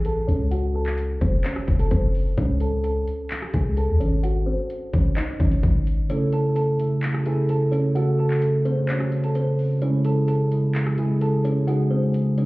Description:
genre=hip hop, trap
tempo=129 BPM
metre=4/4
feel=half-time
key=C# harmonic minor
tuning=A4 = 439 Hz
part: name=warm 808-style bass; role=bass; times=0.0-6.1 s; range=F#1 to E2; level=-22 LUFS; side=equal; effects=none
part: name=trap drum kit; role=drums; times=0.0-12.5 s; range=handclaps, hi-hat, kick drum, rim click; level=-24 LUFS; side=equal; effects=none
part: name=kalimba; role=melody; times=0.1-12.5 s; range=B#3 to A5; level=-27 LUFS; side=right 1 dB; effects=low-pass filter, tape echo
part: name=mellow tine electric piano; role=accompaniment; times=6.1-12.5 s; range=C#3 to C#5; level=-20 LUFS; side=equal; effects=lush chorus, low-pass filter
room=little or no reverb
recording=heard muffled through a wall, club reverb, EQ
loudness=-20 LUFS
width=side -21 dB against mid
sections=0.0-12.5 A section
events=filter sweep 0.0-6.1; kick muted 6.1-12.5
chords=0.0 A; 0.5 F#m; 2.4 C#5; 4.2 G#sus4; 6.1 A; 8.0 F#m; 9.8 C#m; 11.7 G#sus4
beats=0.05 | 0.52 0.98 1.45 1.91 | 2.38 2.84 3.31 3.77 | 4.24 4.70 5.17 5.63 | 6.10 6.56 7.03 7.49 | 7.96 8.42 8.89 9.35 | 9.82 10.28 10.75 11.21 | 11.68 12.14

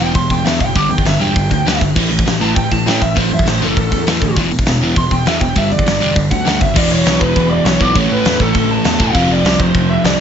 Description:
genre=punk rock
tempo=200 BPM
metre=4/4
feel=straight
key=unclear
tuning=A4 = 444 Hz
part: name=bluesy overdriven lead guitar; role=melody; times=0.0-10.2 s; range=A4 to D6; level=-19 LUFS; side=right 1 dB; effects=distortion
part: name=crunchy overdriven guitar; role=riff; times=0.0-10.2 s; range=E2 to A3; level=-16 LUFS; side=equal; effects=none
part: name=fuzz picked electric bass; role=bass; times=0.0-10.2 s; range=E1 to A2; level=-20 LUFS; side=equal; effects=overdrive
part: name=big rock drum kit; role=drums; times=0.0-10.1 s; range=crash cymbal, hi-hat, kick drum, snare drum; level=-16 LUFS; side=equal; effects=none
room=light reverb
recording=nothing above 7.8 kHz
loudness=-12 LUFS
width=side -8 dB against mid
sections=0.0-6.8 A section; 6.8-10.2 B section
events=lead electric guitar solo 0.0-6.8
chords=0.0 E5; 0.7 G5; 2.0 A5; 4.4 E5; 5.6 G5; 6.8 E5; 8.0 A5; 9.1 F5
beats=0.14 0.44 | 0.75 1.05 1.35 1.65 | 1.95 2.26 2.56 2.86 | 3.16 3.46 3.76 4.06 | 4.36 4.66 4.96 5.26 | 5.56 5.86 6.16 6.46 | 6.76 7.06 7.36 7.65 | 7.95 8.25 8.55 8.85 | 9.14 9.44 9.74 10.04

